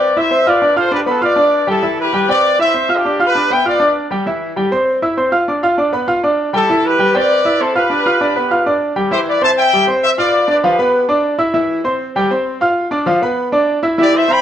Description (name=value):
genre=latin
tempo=198 BPM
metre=4/4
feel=straight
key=C major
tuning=A4 = 439 Hz
part: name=bright trumpet section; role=melody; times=0.0-4.0, 6.5-11.1, 14.0-14.4 s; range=D4 to B5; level=-14 LUFS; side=left 1 dB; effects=plate reverb
part: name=bright concert grand piano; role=accompaniment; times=0.0-14.4 s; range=E3 to F6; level=-14 LUFS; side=right 1 dB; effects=none
room=moderate studio reverb, RT60 0.7 s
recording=worn, warbling old tape, cassette tape, warbly pitch drift, lossy compression artefacts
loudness=-12 LUFS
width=side -10 dB against mid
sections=0.0-9.1 A section; 9.1-14.4 B section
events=none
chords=0.0 Cadd9; 0.6 G7; 1.8 Cadd9; 3.0 G7; 4.3 C; 5.5 G7; 6.7 Cadd9; 7.9 G7; 9.1 C; 10.3 G7; 11.5 C; 12.8 Dm69/F